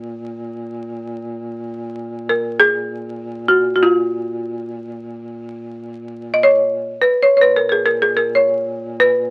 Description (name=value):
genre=caucasian folk, Caucasian lament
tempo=free time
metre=none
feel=none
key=Bb phrygian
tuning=A4 = 440 Hz
part: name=folk marimba with hard mallets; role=melody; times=0.0-9.3 s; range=F4 to Eb5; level=-16 LUFS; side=equal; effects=none
part: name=dark duduk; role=drone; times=0.0-9.3 s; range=Bb2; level=-32 LUFS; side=equal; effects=none
room=moderate club reverb, RT60 0.7 s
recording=very old 78 rpm record, vinyl crackle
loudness=-17 LUFS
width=mono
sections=0.0-9.3 A section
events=none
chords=none